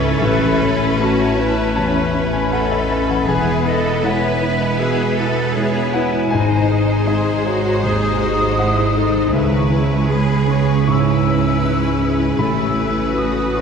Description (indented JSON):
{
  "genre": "cinematic, emotional film score for orchestra",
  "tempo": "79 BPM",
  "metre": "4/4",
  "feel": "rubato",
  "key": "C# minor",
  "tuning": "A4 = 440 Hz",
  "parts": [
    { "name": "rich studio violin section", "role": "melody", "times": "0.0-13.6 s", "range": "B4 to B#4", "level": "-27 LUFS", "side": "left 4 dB", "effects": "none" },
    { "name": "flute section", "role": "second line", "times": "0.0-13.6 s", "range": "G#5 to E6", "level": "-26 LUFS", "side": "left 3 dB", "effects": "none" },
    { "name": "warm clarinet", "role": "second line", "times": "0.0-13.6 s", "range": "G#4 to D#5", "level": "-28 LUFS", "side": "right 1 dB", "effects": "none" },
    { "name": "warm studio violin section", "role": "second line", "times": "0.0-13.6 s", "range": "C#4 to E4", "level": "-27 LUFS", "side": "left 3 dB", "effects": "none" },
    { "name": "rich studio viola section", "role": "accompaniment", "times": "0.0-13.6 s", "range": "G#3 to C#4", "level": "-25 LUFS", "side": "right 1 dB", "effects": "none" },
    { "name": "warm grand piano", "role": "accompaniment", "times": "0.0-13.6 s", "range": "A1 to C#6", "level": "-20 LUFS", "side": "left 2 dB", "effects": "none" },
    { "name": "concert harp", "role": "arpeggios", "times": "0.0-13.6 s", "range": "E2 to B#5", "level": "-24 LUFS", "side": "left 2 dB", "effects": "none" },
    { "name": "rich studio cello section", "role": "bass", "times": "0.0-13.6 s", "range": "C#4 to B4", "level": "-24 LUFS", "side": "right 2 dB", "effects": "none" },
    { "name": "rich studio double bass section", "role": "bass", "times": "0.0-13.6 s", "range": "E1 to C#2", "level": "-22 LUFS", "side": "right 4 dB", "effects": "none" }
  ],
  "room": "wet scoring stage reverb, RT60 1.8 s",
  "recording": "heard from further back in the room",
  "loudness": "-15 LUFS",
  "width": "side -6 dB against mid",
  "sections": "0.0-13.6 A section",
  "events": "none",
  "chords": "0.2 Aadd9; 3.3 E; 6.3 G#; 9.3 C#m7; 12.4 Aadd9",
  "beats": "| 0.22 0.99 1.75 2.51 | 3.27 4.04 4.80 5.57 | 6.32 7.07 7.83 8.57 | 9.33 10.09 10.87 11.63 | 12.39 13.14"
}